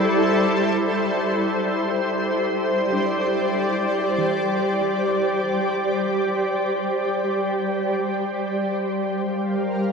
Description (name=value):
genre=ambient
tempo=free time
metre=none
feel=none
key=unclear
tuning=A4 = 439 Hz
part: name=shimmering ambient pad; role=sustained chords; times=0.0-9.9 s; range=G3 to F5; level=-20 LUFS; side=equal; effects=chorus, built-in reverb
part: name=soft round pluck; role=arpeggios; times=0.0-6.3 s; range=E3 to A5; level=-39 LUFS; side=right 1 dB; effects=none
part: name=organ-like drone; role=drone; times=0.0-0.9 s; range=none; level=barely audible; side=none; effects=none
part: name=drifting glass-harmonics texture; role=texture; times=0.0-0.9 s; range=D5 to D6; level=-33 LUFS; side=left 1 dB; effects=none
room=wet huge ambient reverb, RT60 8.1 s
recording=worn, warbling old tape, cassette tape, warbly pitch drift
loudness=-20 LUFS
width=side -5 dB against mid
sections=0.8-9.9 A section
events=none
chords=0.0 C69/G; 0.8 Csus2/G; 7.5 Gm7